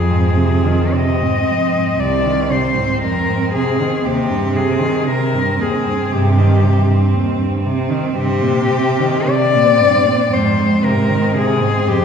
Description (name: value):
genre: classical, lyrical piece for cello ensemble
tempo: 58 BPM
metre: 4/4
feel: rubato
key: C minor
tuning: A4 = 442 Hz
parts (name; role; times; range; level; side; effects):
- clear cello; melody; 0.0-12.0 s; G4 to Eb5; -18 LUFS; left 5 dB; none
- rich cello; second line; 0.0-12.0 s; C4; -21 LUFS; right 6 dB; none
- clear cello; accompaniment; 0.0-12.0 s; Eb2 to Eb3; -20 LUFS; equal; none
- rich cello; bass; 0.0-11.2 s; C2 to C3; -18 LUFS; right 1 dB; none
room: wet concert hall reverb, RT60 1.8 s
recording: heard from further back in the room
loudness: -13 LUFS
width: side -7 dB against mid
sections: 0.0-12.0 A section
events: none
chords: 0.0 Fm7; 4.0 Cm/Eb; 8.2 Cm7/G; 10.3 Fm7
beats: 0.94 1.98 3.02 | 4.04 5.08 6.12 7.14 | 8.16 9.28 10.33 11.37